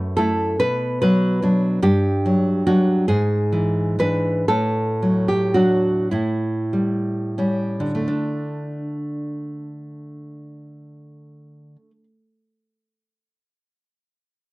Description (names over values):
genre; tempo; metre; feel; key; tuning
romantic piece for solo classical guitar; 28-49 BPM (dotted quarters); 6/8; rubato; D major; A4 = 440 Hz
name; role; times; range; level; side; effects
nylon-string guitar; solo; 0.0-12.0 s; F#2 to B4; -19 LUFS; equal; none
room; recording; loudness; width
light reverb; dry, close 1970s-style studio recording; -18 LUFS; side -21 dB against mid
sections
0.0-8.1 A section; 8.1-12.2 B section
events
slowing down 0.6-8.1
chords
0.0 F#m7; 0.6 Bm; 1.8 G5; 3.1 E7/G#; 4.5 D/A; 6.1 A7; 8.1 D5